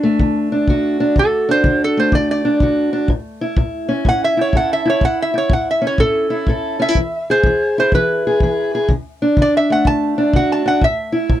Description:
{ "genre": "acoustic country blues, solo or duo", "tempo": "124 BPM", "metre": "4/4", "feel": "swing 64% on 8ths", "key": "A major", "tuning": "A4 = 440 Hz", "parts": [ { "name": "metal-body resonator slide guitar", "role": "melody", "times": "0.0-11.4 s", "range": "A4 to A5", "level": "-18 LUFS", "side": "right 1 dB", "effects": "none" }, { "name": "fingerpicked steel-string acoustic guitar", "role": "accompaniment", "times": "0.0-11.4 s", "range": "A2 to A4", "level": "-17 LUFS", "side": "equal", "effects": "none" }, { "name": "kick drum", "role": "drums", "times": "0.2-11.4 s", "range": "none", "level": "-17 LUFS", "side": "equal", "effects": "none" } ], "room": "light reverb", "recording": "dry, close 1970s-style studio recording", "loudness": "-14 LUFS", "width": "side -12 dB against mid", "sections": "0.0-11.4 A section", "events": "none", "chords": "0.0 D; 3.1 A; 7.0 E; 8.9 D; 10.8 A5", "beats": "0.20 0.68 | 1.16 1.64 2.13 2.61 | 3.09 3.57 4.06 4.54 | 5.02 5.50 5.99 6.47 | 6.95 7.44 7.92 8.40 | 8.88 9.37 9.85 10.33 | 10.82 11.30" }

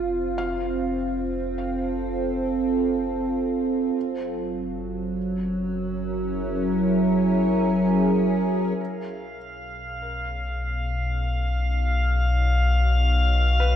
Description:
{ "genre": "ambient", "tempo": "50 BPM", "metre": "4/4", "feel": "straight", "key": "unclear", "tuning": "A4 = 440 Hz", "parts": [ { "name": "evolving wavetable pad", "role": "sustained chords", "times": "0.0-13.8 s", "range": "B2 to F5", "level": "-24 LUFS", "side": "right 1 dB", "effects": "chorus, built-in reverb" }, { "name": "felt-muted upright piano", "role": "arpeggios", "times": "0.0-13.8 s", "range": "Bb4 to F5", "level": "-38 LUFS", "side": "left 3 dB", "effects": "tape echo" }, { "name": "warm sub bass", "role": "bass", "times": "0.0-13.8 s", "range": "F1 to B1", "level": "-26 LUFS", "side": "left 1 dB", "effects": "tube saturation" }, { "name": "drifting glass-harmonics texture", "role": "texture", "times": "9.3-13.8 s", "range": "F5", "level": "-28 LUFS", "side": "equal", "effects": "chorus, built-in reverb" } ], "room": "wet concert hall reverb, RT60 2.4 s", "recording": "dark, warm production", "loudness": "-22 LUFS", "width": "side -9 dB against mid", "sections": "0.0-8.8 A section; 8.8-13.8 B section", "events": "fade-out on felt piano 0.0-8.8; fade-out on sub bass 0.0-8.8; fade-in on ambient pad 8.8-13.8; fade-in on felt piano 8.8-13.8", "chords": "0.0 F; 4.0 Gb7; 8.8 Badd9", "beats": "0.38 1.57 2.77 | 3.96 5.16 6.36 7.58 | 8.80 10.01 11.21 12.41 | 13.60" }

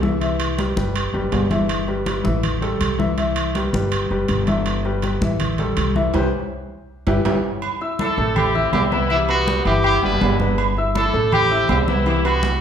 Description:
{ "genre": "latin, salsa", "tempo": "162 BPM", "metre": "4/4", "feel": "straight", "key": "G major", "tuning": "A4 = 440 Hz", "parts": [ { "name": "clear baby grand piano", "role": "accompaniment", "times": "0.0-12.6 s", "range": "E3 to E6", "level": "-23 LUFS", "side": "left 2 dB", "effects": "none" }, { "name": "upright bass", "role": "bass", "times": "0.0-12.6 s", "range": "F#1 to C2", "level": "-23 LUFS", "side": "equal", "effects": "none" }, { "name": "congas", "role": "percussion", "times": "0.0-12.6 s", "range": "none", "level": "-25 LUFS", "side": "left 1 dB", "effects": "none" }, { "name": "timbales and agogo bells", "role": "percussion", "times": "0.2-12.6 s", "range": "none", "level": "-26 LUFS", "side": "right 5 dB", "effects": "none" }, { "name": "bright horn section", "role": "melody", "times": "8.0-12.6 s", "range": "G3 to B4", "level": "-20 LUFS", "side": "left 1 dB", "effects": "none" } ], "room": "wet large studio reverb, RT60 1.2 s", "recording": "heard from further back in the room", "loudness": "-17 LUFS", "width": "side -8 dB against mid", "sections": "0.0-7.6 A section; 7.6-12.6 B section", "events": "band accent 6.1-7.6; drum fill 6.5-7.6", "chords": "0.2 Cmaj7; 1.0 G6; 2.4 Am7; 3.2 Cmaj7; 3.9 G6; 5.4 Am7; 6.1 C5; 6.9 G6; 7.6 Asus4; 8.4 Am7; 9.1 Cmaj7; 9.8 G6; 11.3 Am7; 12.1 Cmaj7", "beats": "| 0.21 0.58 0.95 1.32 | 1.70 2.07 2.44 2.81 | 3.18 3.55 3.92 4.29 | 4.66 5.03 5.40 5.77 | 6.14 6.51 6.88 7.25 | 7.62 7.99 8.36 8.73 | 9.10 9.47 9.84 10.21 | 10.58 10.95 11.32 11.69 | 12.06 12.43" }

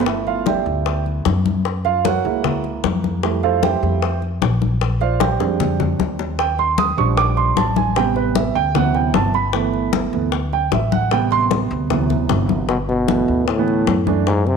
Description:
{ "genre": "Afro-Cuban jazz", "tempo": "152 BPM", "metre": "4/4", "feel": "straight", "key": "G major", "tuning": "A4 = 440 Hz", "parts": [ { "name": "upright bass", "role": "bass", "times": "0.0-14.6 s", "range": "G1 to F#2", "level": "-22 LUFS", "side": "left 1 dB", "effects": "none" }, { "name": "bongos", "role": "percussion", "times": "0.0-14.6 s", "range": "none", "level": "-26 LUFS", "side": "left 11 dB", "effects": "none" }, { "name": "warm upright piano", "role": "accompaniment", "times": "0.1-14.3 s", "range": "C3 to Eb6", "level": "-19 LUFS", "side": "right 9 dB", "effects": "none" }, { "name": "congas", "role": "percussion", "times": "0.1-14.6 s", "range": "none", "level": "-24 LUFS", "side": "left 9 dB", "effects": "none" }, { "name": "mellow trombone", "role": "melody", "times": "12.7-14.6 s", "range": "G#2 to C3", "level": "-19 LUFS", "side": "left 2 dB", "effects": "none" } ], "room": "moderate echo chamber reverb, RT60 1.5 s, small room reverb", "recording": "1960s-style stereo with parts hard left and right", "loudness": "-16 LUFS", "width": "side -6 dB against mid", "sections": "0.1-12.7 A section; 12.7-14.6 B section", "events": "upright piano solo 0.1-12.7; drum fill 5.2-6.4", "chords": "0.1 G69; 1.7 F#9; 3.2 Fmaj9; 4.8 Bb13; 6.4 Ebmaj7; 8.0 Am9; 8.8 D13; 9.5 G69; 11.1 Am7; 11.9 D13; 12.7 G69", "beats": "| 0.07 0.47 0.86 1.26 | 1.65 2.05 2.44 2.84 | 3.23 3.63 4.02 4.42 | 4.81 5.21 5.60 5.99 | 6.39 6.78 7.17 7.57 | 7.96 8.36 8.75 9.14 | 9.54 9.93 10.33 10.72 | 11.11 11.51 11.90 12.30 | 12.69 13.09 13.48 13.88 | 14.27" }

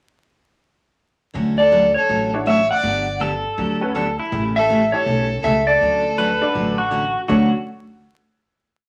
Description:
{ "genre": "country, western swing", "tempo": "162 BPM", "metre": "4/4", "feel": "swing 65% on 8ths", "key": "D major", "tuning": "A4 = 440 Hz", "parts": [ { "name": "picked steel-string acoustic guitar", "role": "accompaniment", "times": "1.3-7.5 s", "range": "C#3 to G4", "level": "-26 LUFS", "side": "equal", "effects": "none" }, { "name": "upright bass", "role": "bass", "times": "1.4-7.5 s", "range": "G1 to D2", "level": "-28 LUFS", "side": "equal", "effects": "none" }, { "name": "clean lap steel guitar", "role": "melody", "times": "1.6-6.9 s", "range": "C#5 to F#5", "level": "-20 LUFS", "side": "equal", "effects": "none" }, { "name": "clear fiddle", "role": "second line", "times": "1.6-6.9 s", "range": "A4 to D5", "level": "-27 LUFS", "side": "equal", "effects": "none" }, { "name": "honky-tonk upright piano", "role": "accompaniment", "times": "2.3-7.5 s", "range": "C#4 to D5", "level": "-28 LUFS", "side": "equal", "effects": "none" }, { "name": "pedal steel guitar", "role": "second line", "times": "3.2-7.5 s", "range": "E4 to B4", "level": "-25 LUFS", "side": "equal", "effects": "none" } ], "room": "wet studio reverb, RT60 0.8 s", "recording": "vinyl crackle", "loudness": "-19 LUFS", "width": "mono", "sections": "1.3-7.3 A section; 7.3-8.8 final chord", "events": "none", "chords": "1.3 Dmaj7; 2.8 Gmaj9; 4.3 A7; 5.8 Dmaj7", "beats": "| 1.35 1.72 2.09 2.46 | 2.83 3.21 3.58 3.95 | 4.32 4.69 5.06 5.43 | 5.80 6.17 6.54 6.91 | 7.28" }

